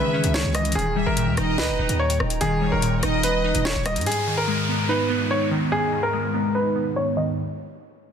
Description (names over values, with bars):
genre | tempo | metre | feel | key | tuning
hip hop, drill | 145 BPM | 4/4 | half-time | G# harmonic minor | A4 = 440 Hz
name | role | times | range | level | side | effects
bright upright piano | melody | 0.0-7.3 s | G#4 to D#5 | -25 LUFS | equal | low-pass filter
warm studio violin section | second line | 0.0-3.6 s | C#5 to E5 | -30 LUFS | left 1 dB | ping-pong delay
glassy digital keys | accompaniment | 0.0-7.4 s | G#2 to D#5 | -24 LUFS | equal | chorus, low-pass filter
hollow soft pad | sustained chords | 0.0-4.0 s | C#3 to A#5 | -34 LUFS | left 2 dB | chorus
distorted 808-style bass | bass | 0.2-4.1 s | D#1 to G2 | -26 LUFS | equal | distortion
drill drum kit | drums | 0.2-4.2 s | hi-hat, rim click, snare drum | -27 LUFS | left 1 dB | none
downlifter | sound effects | 4.1-7.4 s | none | -31 LUFS | equal | none
room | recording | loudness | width
light reverb | dense, heavily limited modern master | -20 LUFS | side -7 dB against mid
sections
0.0-4.1 A section; 4.1-7.4 B section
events
filter sweep 4.1-7.4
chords
0.0 C#madd9; 0.8 D#; 4.1 G#m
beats
0.34 | 0.75 1.17 1.58 2.00 | 2.41 2.82 3.24 3.65 | 4.06 4.48 4.89 5.31 | 5.72 6.13 6.55 6.96